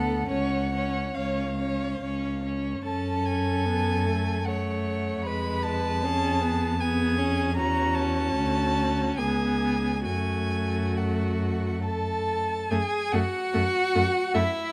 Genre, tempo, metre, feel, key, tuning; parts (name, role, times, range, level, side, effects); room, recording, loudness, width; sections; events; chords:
classical, slow romantic movement for string quartet; 66-79 BPM; 3/4; rubato; F# minor; A4 = 439 Hz
rich violin; melody; 0.0-14.7 s; E5 to B5; -33 LUFS; equal
rich violin; second line; 0.0-14.7 s; E4 to C#5; -33 LUFS; equal
clear viola; accompaniment; 0.0-14.4 s; G#3 to C#4; -32 LUFS; equal
rich cello; bass; 0.0-14.4 s; C#2 to F#2; -31 LUFS; equal
moderate recital hall reverb, RT60 1.5 s; close, detailed microphones; -26 LUFS; mono
0.0-12.7 A section; 12.7-14.7 A section
0.3 C#; 2.9 F#m; 5.3 C#7/E#; 7.6 F#7/E; 8.4 Dmaj7; 9.2 C#5; 10.1 F#m